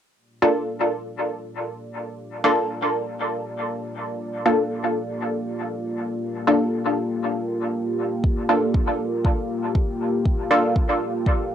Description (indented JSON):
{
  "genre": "dub techno",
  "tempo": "119 BPM",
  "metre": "4/4",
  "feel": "straight",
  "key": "G minor",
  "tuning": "A4 = 440 Hz",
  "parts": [
    { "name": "dark analog pad", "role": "sustained chords", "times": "0.2-11.5 s", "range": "Bb3 to D5", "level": "-27 LUFS", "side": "equal", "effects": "chorus, sidechain pumping, cassette tape" },
    { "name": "filtered dub chord stab", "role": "stabs", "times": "0.4-11.5 s", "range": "Bb3 to A4", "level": "-22 LUFS", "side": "equal", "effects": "chorus, phaser, sidechain pumping, cassette tape, dub echo" },
    { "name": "electronic kick drum", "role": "drums", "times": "8.2-11.4 s", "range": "none", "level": "-21 LUFS", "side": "equal", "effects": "none" }
  ],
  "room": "wet booth ambience, RT60 0.2 s",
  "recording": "home recording on cassette",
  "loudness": "-21 LUFS",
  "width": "side -9 dB against mid",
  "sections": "0.2-11.5 A section",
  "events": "none",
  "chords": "0.2 Gm7"
}